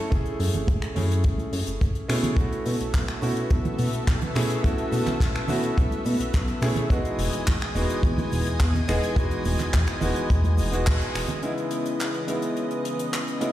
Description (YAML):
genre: nu-disco, nu disco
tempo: 106 BPM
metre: 4/4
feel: straight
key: C# minor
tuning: A4 = 439 Hz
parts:
  - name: clear baby grand piano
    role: accompaniment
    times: 0.0-13.5 s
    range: C#3 to G#4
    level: -28 LUFS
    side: right 1 dB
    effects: sidechain pumping, ping-pong delay
  - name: chorused synth bass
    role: bass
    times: 0.1-11.3 s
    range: E1 to B2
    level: -26 LUFS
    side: equal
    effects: none
  - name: kick drum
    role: drums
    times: 0.1-11.0 s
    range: none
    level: -24 LUFS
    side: equal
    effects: studio reverb
  - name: tight funk drum kit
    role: drums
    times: 0.1-13.5 s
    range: finger snaps, handclaps, hi-hat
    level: -34 LUFS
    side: left 1 dB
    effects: studio reverb
  - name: congas and egg shaker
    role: percussion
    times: 0.4-11.4 s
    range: none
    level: -33 LUFS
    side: right 2 dB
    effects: none
  - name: lush unison pad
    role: sustained chords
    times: 2.4-13.5 s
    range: C#3 to G#5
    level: -32 LUFS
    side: left 1 dB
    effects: chorus, sidechain pumping
room: light reverb, small room ambience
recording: played on a big sound system in a bare room, stone room reverb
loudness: -22 LUFS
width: side -13 dB against mid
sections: 0.0-11.4 A section; 11.4-13.5 B section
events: band accent 10.9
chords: 0.0 F#m9; 2.1 B7sus4; 6.9 Emaj7; 11.4 C#m9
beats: | 0.12 0.68 1.25 1.81 | 2.38 2.94 3.51 4.08 | 4.64 5.21 5.78 6.34 | 6.91 7.47 8.04 8.61 | 9.17 9.74 10.30 10.87 | 11.44 12.00 12.57 13.13